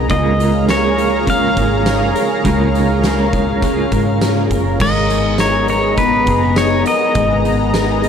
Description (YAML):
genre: dream pop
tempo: 102 BPM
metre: 4/4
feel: straight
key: unclear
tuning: A4 = 439 Hz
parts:
  - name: clean electric guitar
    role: accompaniment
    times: 0.0-5.3 s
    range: C#3 to A#4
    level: -20 LUFS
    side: right 3 dB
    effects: tremolo, lush chorus
  - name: lush unison pad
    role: sustained chords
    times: 0.0-8.1 s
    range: B3 to A#5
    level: -19 LUFS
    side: equal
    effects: chorus
  - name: mellow electric guitar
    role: arpeggios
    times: 0.0-8.1 s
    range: G#3 to A#4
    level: -20 LUFS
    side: left 2 dB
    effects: ensemble chorus, tape echo
  - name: vintage muted picked electric bass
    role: bass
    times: 0.0-8.1 s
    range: F#1 to G#2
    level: -20 LUFS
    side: equal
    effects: none
  - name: pedal steel guitar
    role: melody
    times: 0.1-7.7 s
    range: B4 to E#5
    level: -19 LUFS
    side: equal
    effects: tape echo
  - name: oversized low-tuned drum kit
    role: drums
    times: 0.1-8.1 s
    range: crash cymbal, hi-hat, kick drum, snare drum, tambourine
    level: -21 LUFS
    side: equal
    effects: none
room: small room ambience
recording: none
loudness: -12 LUFS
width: side -7 dB against mid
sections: 0.0-4.8 A section; 4.8-8.1 B section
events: none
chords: 0.1 C#6; 4.8 G#madd9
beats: | 0.10 0.68 1.27 1.86 | 2.45 3.04 3.63 4.21 | 4.80 5.39 5.98 6.57 | 7.16 7.74